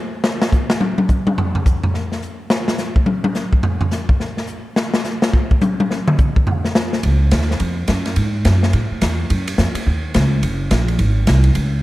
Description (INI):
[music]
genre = jazz, big band swing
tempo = 212 BPM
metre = 4/4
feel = swing 62% on 8ths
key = Db major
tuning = A4 = 440 Hz
[part]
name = swinging big-band drum kit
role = drums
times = 0.2-11.6 s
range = hi-hat, kick drum, ride cymbal, snare drum, toms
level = -17 LUFS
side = left 1 dB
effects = none
[part]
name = upright bass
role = bass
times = 7.0-11.8 s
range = Gb1 to A2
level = -15 LUFS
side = right 1 dB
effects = none
[sound]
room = light reverb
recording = dark, warm production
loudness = -15 LUFS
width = side -17 dB against mid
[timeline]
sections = 0.0-7.0 A section; 7.0-11.8 B section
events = drum solo 0.0-7.0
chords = none